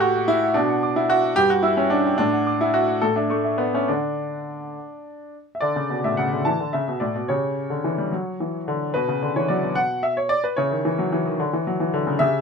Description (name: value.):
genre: classical-period piano sonatina.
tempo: 73 BPM (dotted quarters).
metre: 6/8.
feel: rubato.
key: D major.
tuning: A4 = 441 Hz.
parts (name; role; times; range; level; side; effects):
clear grand piano; solo; 0.0-12.4 s; G2 to E6; -20 LUFS; equal; none.
room: light reverb.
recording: minimal, uncompressed stereo recording.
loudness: -20 LUFS.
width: side -5 dB against mid.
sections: 0.0-5.6 A section; 5.6-12.4 A section.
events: none.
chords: 0.0 F#m/A; 0.6 Bm; 1.4 Em/G; 2.2 D/A; 3.0 A; 3.9 D; 5.6 D5; 7.3 C#dim; 8.1 D; 8.9 Bm; 10.6 C#madd9; 11.4 C#madd11.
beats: | 0.56 1.36 | 2.18 3.02 | 3.88 4.75 | 5.62 6.46 | 7.29 8.12 | 8.94 9.76 | 10.57 11.39 | 12.20.